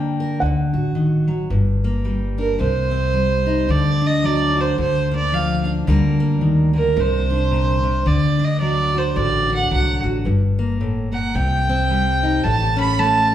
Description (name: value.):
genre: acoustic folk duo or small band.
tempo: 110 BPM.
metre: 4/4.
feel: swing 59% on 8ths.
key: G harmonic minor.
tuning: A4 = 440 Hz.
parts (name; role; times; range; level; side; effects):
felt-muted upright piano; melody; 0.0-1.2 s; F#5 to G5; -28 LUFS; right 1 dB; none.
fingerpicked steel-string acoustic guitar; accompaniment; 0.0-13.3 s; G2 to Bb4; -20 LUFS; left 1 dB; none.
upright bass; bass; 0.4-13.3 s; G1 to D2; -22 LUFS; equal; none.
warm fiddle; second line; 2.4-13.3 s; Bb4 to B5; -20 LUFS; right 4 dB; none.
room: wet large studio reverb, RT60 1.2 s.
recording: band playing live in one room.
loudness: -16 LUFS.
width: side -11 dB against mid.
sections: 0.0-1.5 A section; 1.5-13.3 B section.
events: fiddle solo 1.5-13.3.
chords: 0.4 D; 1.5 Gm; 2.6 Cm; 3.7 D; 4.8 Bb/D; 5.9 Gm/D; 7.0 Csus2; 8.1 D; 10.3 Gmadd9; 11.4 Cm; 12.4 A.